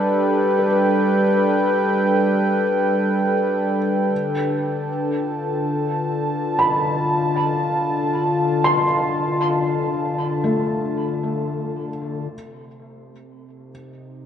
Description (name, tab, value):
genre	ambient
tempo	free time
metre	none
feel	none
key	unclear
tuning	A4 = 440 Hz
part	warm analog pad	sustained chords	0.0-14.3 s	C3 to A5	-19 LUFS	equal	chorus
part	felt-muted upright piano	arpeggios	0.0-13.7 s	A3 to C6	-24 LUFS	equal	tape echo
room	wet spring reverb, RT60 2.3 s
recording	echo-heavy mix, cassette tape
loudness	-18 LUFS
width	side -8 dB against mid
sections	0.0-12.3 A section; 12.3-14.3 B section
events	none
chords	0.0 Gadd9; 4.1 Dm; 12.3 Cm6